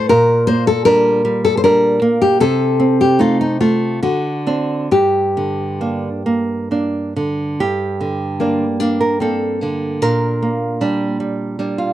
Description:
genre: romantic duo for nylon-string guitar and classical guitar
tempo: 65-80 BPM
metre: 3/4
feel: rubato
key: G minor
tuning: A4 = 440 Hz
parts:
  - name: nylon-string guitar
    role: melody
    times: 0.0-11.9 s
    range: Bb3 to C5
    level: -16 LUFS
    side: left 2 dB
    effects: none
  - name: nylon-string guitar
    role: accompaniment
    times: 0.0-11.9 s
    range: G2 to Bb4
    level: -17 LUFS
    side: right 2 dB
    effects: none
room: little or no reverb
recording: dry, close 1970s-style studio recording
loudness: -14 LUFS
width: side -13 dB against mid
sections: 0.0-7.6 A section; 7.6-11.9 B section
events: none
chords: 0.1 Gm/Bb; 2.4 Adim/C; 4.0 D7; 4.9 Gm; 10.0 Gm/Bb

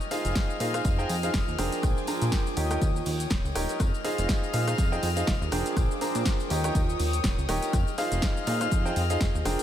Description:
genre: piano house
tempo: 122 BPM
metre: 4/4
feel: swing 56% on 16ths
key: F minor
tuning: A4 = 440 Hz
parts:
  - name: warm chamber string section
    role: sustained chords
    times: 0.0-9.6 s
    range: Ab4 to F6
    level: -35 LUFS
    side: left 4 dB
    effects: sidechain pumping
  - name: punchy analog drum machine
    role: drums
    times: 0.0-9.6 s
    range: hi-hat, rim click, shaker, snare drum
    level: -34 LUFS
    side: equal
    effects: overdrive, studio reverb
  - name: tambourine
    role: percussion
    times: 0.0-9.6 s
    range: none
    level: -44 LUFS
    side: left 4 dB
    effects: none
  - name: deep dark ambient pad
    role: texture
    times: 0.0-9.6 s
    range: F4 to C6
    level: -38 LUFS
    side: right 3 dB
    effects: chorus, built-in reverb, sidechain pumping
  - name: clear grand piano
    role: riff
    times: 0.1-9.6 s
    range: D4 to Bb5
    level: -30 LUFS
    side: right 1 dB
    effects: vintage 12-bit sampler grit, sidechain pumping, ping-pong delay
  - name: vintage drum kit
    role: drums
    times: 0.1-9.6 s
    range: hi-hat, snare drum, tambourine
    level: -45 LUFS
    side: right 2 dB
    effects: none
  - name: plucky analog bass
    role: bass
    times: 0.2-9.6 s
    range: Eb1 to Bb2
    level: -29 LUFS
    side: equal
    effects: sidechain pumping
  - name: electronic kick drum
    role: drums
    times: 0.4-9.3 s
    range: none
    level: -27 LUFS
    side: equal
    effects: studio reverb
room: light reverb, small room ambience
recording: none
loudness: -24 LUFS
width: side -11 dB against mid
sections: 0.0-9.6 A section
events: none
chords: 0.0 Fm7; 1.8 Bb13; 2.6 Eb7; 3.8 Fm7; 5.8 Bb13; 6.5 Eb7; 7.7 Fm7

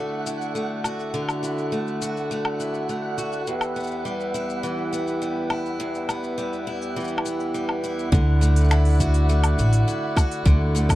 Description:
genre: folktronica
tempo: 103 BPM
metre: 4/4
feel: straight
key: D major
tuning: A4 = 440 Hz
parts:
  - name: pedal harmonium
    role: sustained chords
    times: 0.0-11.0 s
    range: B3 to F#5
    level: -30 LUFS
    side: equal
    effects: none
  - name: picked steel-string acoustic guitar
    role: arpeggios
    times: 0.0-11.0 s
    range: E2 to F#4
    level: -27 LUFS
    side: equal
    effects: tape echo
  - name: flickering grainy texture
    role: texture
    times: 0.0-11.0 s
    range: F#5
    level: -35 LUFS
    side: right 3 dB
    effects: built-in reverb
  - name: organic electronic drum kit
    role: drums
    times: 0.3-11.0 s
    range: finger snaps, hi-hat, shaker, woodblock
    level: -29 LUFS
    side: left 2 dB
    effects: none
  - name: upright bass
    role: bass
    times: 8.1-11.0 s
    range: A1 to D2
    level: -18 LUFS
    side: equal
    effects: none
  - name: electronic kick drum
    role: drums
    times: 8.1-11.0 s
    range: none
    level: -19 LUFS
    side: equal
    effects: none
room: little or no reverb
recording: dry, close 1970s-style studio recording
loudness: -21 LUFS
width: side -16 dB against mid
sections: 0.0-8.1 A section; 8.1-11.0 B section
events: none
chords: 0.0 Dadd9; 3.5 Em; 8.1 Dadd9

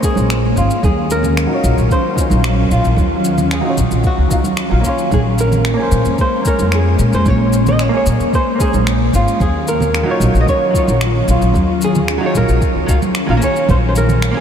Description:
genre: sunset chillout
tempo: 112 BPM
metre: 4/4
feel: straight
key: unclear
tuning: A4 = 438 Hz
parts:
  - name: flamenco guitar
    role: melody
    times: 0.0-14.4 s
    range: F4 to Eb5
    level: -19 LUFS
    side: equal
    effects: vintage 12-bit sampler grit, ping-pong delay, shimmer reverb
  - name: archtop guitar, miked and amplified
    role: accompaniment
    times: 0.0-14.4 s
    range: Gb3 to F5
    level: -22 LUFS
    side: equal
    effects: auto-pan, vintage 12-bit sampler grit, low-pass filter, ping-pong delay, shimmer reverb
  - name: ethereal airy pad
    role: sustained chords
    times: 0.0-14.4 s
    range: Eb3 to F5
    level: -19 LUFS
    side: equal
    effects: ensemble chorus, built-in reverb, shimmer reverb
  - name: electronic kick drum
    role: drums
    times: 0.0-13.8 s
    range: none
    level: -17 LUFS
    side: equal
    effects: none
  - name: electronic shaker and finger snaps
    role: drums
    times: 0.0-14.3 s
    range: none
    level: -26 LUFS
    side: left 1 dB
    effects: none
  - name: upright bass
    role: bass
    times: 0.2-14.3 s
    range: Ab1 to Bb2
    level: -16 LUFS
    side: equal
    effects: tube saturation
  - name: congas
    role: percussion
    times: 0.2-14.2 s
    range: none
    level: -24 LUFS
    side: right 3 dB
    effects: none
room: moderate huge ambient reverb, RT60 8.0 s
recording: dreamy mix soaked in reverb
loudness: -12 LUFS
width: side -8 dB against mid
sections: 0.0-14.4 A section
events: filter sweep on hollow-body jazz guitar 0.0-14.4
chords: 0.0 Bbm9; 0.8 Ebm9; 5.1 Bbm9; 9.4 Ebm9; 13.7 Bbm7

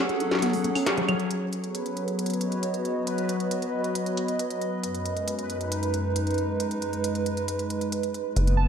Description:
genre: IDM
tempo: 136 BPM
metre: 4/4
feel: straight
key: unclear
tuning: A4 = 439 Hz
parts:
  - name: warbly lo-fi synth keys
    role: melody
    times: 0.0-1.0, 8.6-8.7 s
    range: F#5 to A5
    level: -35 LUFS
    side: right 1 dB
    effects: chorus, tape echo
  - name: hollow soft pad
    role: sustained chords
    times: 0.0-8.7 s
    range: F#2 to D#5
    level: -27 LUFS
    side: right 1 dB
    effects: chorus
  - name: deep acid bass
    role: arpeggios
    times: 0.0-1.1 s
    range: F#3 to F#4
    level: -29 LUFS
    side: equal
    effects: ensemble chorus, digital delay
  - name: bubbling stepped-filter texture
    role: texture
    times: 0.0-8.4 s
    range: B4 to C#5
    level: -36 LUFS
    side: left 1 dB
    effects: chorus, built-in reverb
  - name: industrial drum kit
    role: drums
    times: 0.1-8.6 s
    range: claves, hi-hat, snare drum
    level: -31 LUFS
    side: equal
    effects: small room reverb
  - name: deep acid bass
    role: bass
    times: 8.4-8.7 s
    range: F#1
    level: -20 LUFS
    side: equal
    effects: tube saturation
room: moderate plate reverb, RT60 1.8 s, digital ambience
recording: dark, warm production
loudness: -25 LUFS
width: side -8 dB against mid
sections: 0.0-1.3 A section; 1.3-8.4 B section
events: break 0.0-1.3; band accent 0.9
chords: 0.0 F#m; 1.3 B/F#; 4.8 G#m7/F#

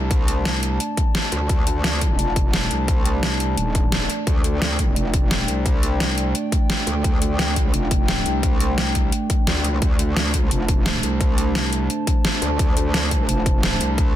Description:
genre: dark technical drum and bass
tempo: 173 BPM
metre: 4/4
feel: straight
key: D minor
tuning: A4 = 439 Hz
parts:
  - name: dark analog pad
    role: sustained chords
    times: 0.0-14.2 s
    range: A3 to A5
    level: -26 LUFS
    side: right 1 dB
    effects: chorus, sidechain pumping
  - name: metallic wobble bass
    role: bass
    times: 0.0-14.2 s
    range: Eb1 to D2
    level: -23 LUFS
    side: equal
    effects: distortion, chorus, tube saturation, sidechain pumping
  - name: dubstep drum kit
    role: drums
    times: 0.1-14.1 s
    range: hi-hat, snare drum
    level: -24 LUFS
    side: equal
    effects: overdrive
  - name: electronic kick drum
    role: drums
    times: 0.1-14.0 s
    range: none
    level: -20 LUFS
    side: equal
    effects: overdrive
room: light reverb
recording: dense, heavily limited modern master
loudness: -18 LUFS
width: side -12 dB against mid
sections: 0.0-14.2 A section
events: none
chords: 0.0 D5

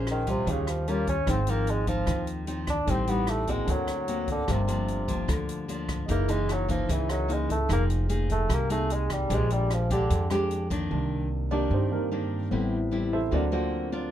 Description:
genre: bossa nova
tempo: 149 BPM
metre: 4/4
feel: straight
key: C minor from 10.9 s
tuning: A4 = 439 Hz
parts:
  - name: nylon-string guitar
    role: accompaniment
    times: 0.0-14.1 s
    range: F2 to C5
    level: -31 LUFS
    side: left 2 dB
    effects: none
  - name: warm baby grand piano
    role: accompaniment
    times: 0.0-14.1 s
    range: Eb3 to Ab5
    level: -34 LUFS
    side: right 3 dB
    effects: none
  - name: upright bass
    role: bass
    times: 0.0-14.1 s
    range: F1 to G2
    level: -29 LUFS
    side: equal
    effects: none
  - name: warm bassoon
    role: melody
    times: 0.1-10.3 s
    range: C3 to D4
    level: -30 LUFS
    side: equal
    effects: none
  - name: open jazz drum kit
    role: drums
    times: 0.1-10.8 s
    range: hi-hat, kick drum, rim click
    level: -34 LUFS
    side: equal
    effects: none
room: light reverb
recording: dark, warm production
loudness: -25 LUFS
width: side -11 dB against mid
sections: 0.0-10.9 A section; 10.9-14.1 A section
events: bassoon solo 0.0-10.9; grand piano solo 10.9-14.1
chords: 0.5 Eb9; 1.3 Ab6; 2.9 Am7b5; 3.7 Daug7; 4.5 Gm7; 6.1 Gb13; 7.7 Fm11; 9.3 Bb13; 10.9 Cm9; 12.5 Am7; 13.3 D7alt

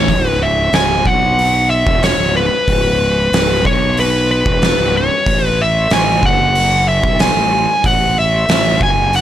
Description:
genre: stoner and doom metal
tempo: 93 BPM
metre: 4/4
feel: straight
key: C# minor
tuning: A4 = 440 Hz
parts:
  - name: fuzz lead guitar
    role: melody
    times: 0.0-9.2 s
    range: B4 to G#5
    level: -14 LUFS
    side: equal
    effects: distortion, tape echo
  - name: fuzz fingered electric bass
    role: bass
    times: 0.0-9.2 s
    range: C#1 to B1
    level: -17 LUFS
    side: equal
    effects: overdrive, tube saturation
  - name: oversized low-tuned drum kit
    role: drums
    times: 0.1-9.2 s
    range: hi-hat, kick drum, snare drum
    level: -17 LUFS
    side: equal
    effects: none
room: little or no reverb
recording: none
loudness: -11 LUFS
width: side -11 dB against mid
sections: 0.1-9.2 A section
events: none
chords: 0.1 C#m; 1.1 B5; 1.9 C#m; 3.6 Bsus2; 4.5 C#m; 5.3 Amaj7; 6.2 N.C.; 7.0 A5

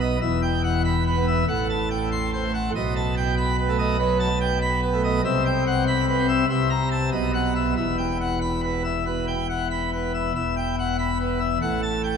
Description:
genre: classical, organ toccata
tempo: 95 BPM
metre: 4/4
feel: straight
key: E minor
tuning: A4 = 440 Hz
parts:
  - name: pipe organ, plenum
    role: solo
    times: 0.0-12.2 s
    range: E1 to C6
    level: -21 LUFS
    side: equal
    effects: none
room: wet cathedral reverb, RT60 5.1 s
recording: in a vast, echoing space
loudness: -21 LUFS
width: side -6 dB against mid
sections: 0.0-10.4 A section; 10.4-12.2 A section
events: none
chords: 0.2 Em; 1.5 F#dim/A; 2.7 B7; 5.2 Cmaj7; 6.5 C7; 7.1 B; 7.8 Em; 11.6 F#m/A

